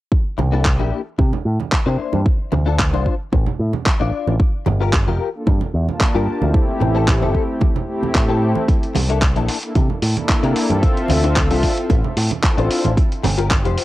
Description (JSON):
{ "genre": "nu-disco, nu disco", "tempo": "112 BPM", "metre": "4/4", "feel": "swing 54% on 16ths", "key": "D minor", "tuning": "A4 = 440 Hz", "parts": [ { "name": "electronic kick drum", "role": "drums", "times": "0.1-13.6 s", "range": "none", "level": "-17 LUFS", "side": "equal", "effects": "cassette tape" }, { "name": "direct-recorded clean electric guitar", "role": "riff", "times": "0.4-13.8 s", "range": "Bb3 to D5", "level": "-24 LUFS", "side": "left 7 dB", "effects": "ensemble chorus, cassette tape, tape echo" }, { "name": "picked electric bass with an envelope filter", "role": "bass", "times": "0.4-13.8 s", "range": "F1 to C3", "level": "-18 LUFS", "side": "equal", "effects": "tube saturation" }, { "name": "congas", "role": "percussion", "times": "0.4-13.7 s", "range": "none", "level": "-27 LUFS", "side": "right 7 dB", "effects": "none" }, { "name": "dusty soul sampler-style drum kit", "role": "drums", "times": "0.6-13.8 s", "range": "handclaps, hi-hat", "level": "-23 LUFS", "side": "equal", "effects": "cassette tape" }, { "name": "warm analog pad", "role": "accompaniment", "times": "5.3-12.8 s", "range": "A3 to A5", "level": "-23 LUFS", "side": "equal", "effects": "chorus, sidechain pumping, cassette tape, tape echo" } ], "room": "little or no reverb", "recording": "home recording on cassette", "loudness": "-15 LUFS", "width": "side -16 dB against mid", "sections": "0.1-13.8 A section", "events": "none", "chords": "0.1 C13; 2.3 Dm7; 4.4 Gm7; 6.5 Am7; 8.7 C13; 10.8 Dm7; 13.0 Gm7", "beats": "| 0.12 0.65 1.19 1.72 | 2.26 2.79 3.33 3.87 | 4.40 4.94 5.47 6.01 | 6.54 7.08 7.62 8.15 | 8.69 9.22 9.76 10.29 | 10.83 11.37 11.90 12.44 | 12.97 13.51" }